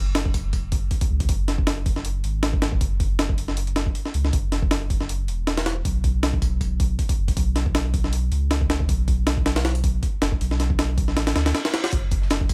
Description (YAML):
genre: drum and bass, jungle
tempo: 158 BPM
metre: 4/4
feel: swing 55% on 16ths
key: unclear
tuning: A4 = 441 Hz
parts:
  - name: saturated sub bass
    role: bass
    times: 0.0-12.5 s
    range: E1 to D2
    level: -26 LUFS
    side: equal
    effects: tube saturation
  - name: jungle sampler-style drum kit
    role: drums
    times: 0.1-12.5 s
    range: hi-hat, kick drum, snare drum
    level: -25 LUFS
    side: equal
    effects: none
  - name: reverse cymbal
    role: sound effects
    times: 11.4-11.9 s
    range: none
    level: -36 LUFS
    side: equal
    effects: none
  - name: shaker and snare drum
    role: drums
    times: 11.9-12.5 s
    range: none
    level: -40 LUFS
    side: equal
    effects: high-pass filter on hats, high-pass filter on snare, high-pass filter on perc, high-pass filter on room
room: little or no reverb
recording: none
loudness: -23 LUFS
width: mono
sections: 0.0-12.5 A section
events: reverse cymbal 11.4-11.9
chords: none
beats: 0.15 0.53 0.91 | 1.29 1.67 2.05 2.43 | 2.81 3.19 3.57 3.95 | 4.33 4.71 5.09 5.47 | 5.85 6.23 6.61 6.99 | 7.37 7.75 8.13 8.51 | 8.89 9.27 9.65 10.03 | 10.40 10.79 11.16 11.54 | 11.92 12.30